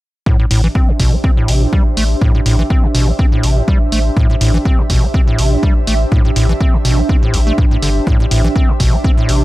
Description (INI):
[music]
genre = acid house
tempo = 123 BPM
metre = 4/4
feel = swing 54% on 16ths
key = A minor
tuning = A4 = 440 Hz
[part]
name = acid bass, square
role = riff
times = 0.3-9.4 s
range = A1 to C4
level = -17 LUFS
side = equal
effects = sidechain pumping, analog delay
[part]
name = electronic kick drum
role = drums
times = 0.3-9.2 s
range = none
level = -13 LUFS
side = equal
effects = none
[part]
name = ethereal airy pad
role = texture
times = 0.3-9.4 s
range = D4 to E5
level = -21 LUFS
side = right 2 dB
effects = ensemble chorus, built-in reverb, sidechain pumping
[part]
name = warm sub bass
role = bass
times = 0.5-9.4 s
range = G1 to A1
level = -15 LUFS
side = equal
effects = tube saturation, sidechain pumping
[part]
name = electronic hi-hat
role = drums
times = 0.5-9.4 s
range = none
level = -22 LUFS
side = equal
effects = none
[sound]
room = little or no reverb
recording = dry, gritty hardware recording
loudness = -11 LUFS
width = side -17 dB against mid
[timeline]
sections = 0.3-9.4 A section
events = none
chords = 0.3 Am